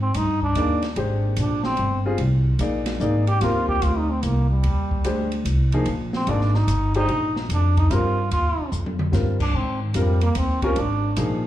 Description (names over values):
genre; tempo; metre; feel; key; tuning
modal jazz; 147 BPM; 3/4; swing 66% on 8ths; unclear; A4 = 441 Hz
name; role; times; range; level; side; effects
trombone with metal mute; second line; 0.0-11.2 s; Eb3 to G4; -25 LUFS; right 2 dB; slapback echo
upright bass; bass; 0.0-11.5 s; G1 to Ab2; -22 LUFS; equal; none
open jazz drum kit; drums; 0.1-11.3 s; crash cymbal, hi-hat, kick drum, ride cymbal, snare drum, toms; -31 LUFS; equal; none
warm upright piano; accompaniment; 0.6-11.4 s; F3 to D5; -27 LUFS; left 2 dB; slapback echo
room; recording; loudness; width
small room ambience; live gig heard through the venue's PA, club reverb; -19 LUFS; side -13 dB against mid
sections
0.0-11.5 A section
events
trombone solo 0.0-11.5; drum fill 8.7-9.1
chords
0.0 Abmaj9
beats
0.15 0.56 | 0.97 1.38 1.78 | 2.19 2.60 3.01 | 3.42 3.82 4.23 | 4.64 5.05 5.46 | 5.87 6.27 6.68 | 7.09 7.50 7.91 | 8.31 8.72 9.13 | 9.54 9.95 10.35 | 10.76 11.17